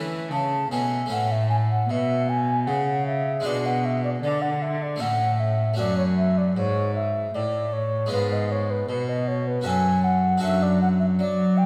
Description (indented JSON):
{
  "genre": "classical, baroque-style sonata movement with continuo",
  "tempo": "77 BPM",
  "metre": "3/4",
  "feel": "straight",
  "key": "A major",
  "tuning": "A4 = 440 Hz",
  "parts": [
    { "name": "mellow baroque flute", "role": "melody", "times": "0.0-11.7 s", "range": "Cb5 to A5", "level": "-28 LUFS", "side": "equal", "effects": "none" },
    { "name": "harpsichord", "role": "accompaniment", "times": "0.0-11.7 s", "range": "F#2 to A4", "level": "-34 LUFS", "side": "equal", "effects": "none" },
    { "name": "dark cello", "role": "bass", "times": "0.0-11.7 s", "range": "F#2 to F#3", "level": "-26 LUFS", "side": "equal", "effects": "none" }
  ],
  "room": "wet recital hall reverb, RT60 1.3 s",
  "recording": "heard from further back in the room",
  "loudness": "-24 LUFS",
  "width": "mono",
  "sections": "0.0-1.1 A section; 1.1-11.7 B section",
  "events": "none",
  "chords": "0.0 A; 3.4 G#dim/B; 5.0 A; 5.8 F#m; 8.1 Fdim/Ab; 9.7 F#m; 10.4 D/F#"
}